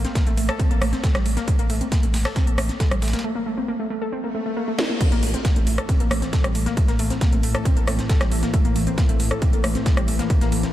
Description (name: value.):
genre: driving peak-time techno.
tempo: 136 BPM.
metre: 4/4.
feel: straight.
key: A phrygian.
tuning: A4 = 442 Hz.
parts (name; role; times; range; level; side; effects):
warbly dusty pluck; riff; 0.0-10.7 s; G3 to A4; -26 LUFS; equal; chorus, tube saturation, cassette tape, sidechain pumping, tape echo.
saturated sub bass; bass; 0.0-10.6 s; A1; -27 LUFS; equal; overdrive, sidechain pumping, low-pass filter.
breakbeat sampler-style drum kit; drums; 0.0-10.7 s; ride cymbal, snare drum; -37 LUFS; equal; sidechain pumping on cymbals, high-pass filter on cymbals, high-pass filter on snare.
techno drum kit; drums; 0.0-10.7 s; crash cymbal, hi-hat, rim click, snare drum; -29 LUFS; equal; none.
electronic kick drum; drums; 0.2-10.4 s; none; -20 LUFS; equal; none.
swell; sound effects; 4.2-5.0 s; none; -35 LUFS; equal; none.
deep dark ambient pad; drone; 6.1-10.7 s; A2 to E3; -28 LUFS; left 1 dB; chorus, built-in reverb, sidechain pumping.
room: light reverb.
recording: faint mains hum.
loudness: -19 LUFS.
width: side -13 dB against mid.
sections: 0.0-5.0 A section; 5.0-10.7 B section.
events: break 3.2-5.0; swell 4.2-5.0; drum fill 4.8; band accent 4.8; drop 5.0-10.7.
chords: 0.0 Am.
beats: 0.15 0.59 1.04 | 1.48 1.92 2.36 2.80 | 3.24 3.68 4.12 4.57 | 5.01 5.45 5.89 6.33 | 6.77 7.21 7.65 8.10 | 8.54 8.98 9.42 9.86 | 10.30.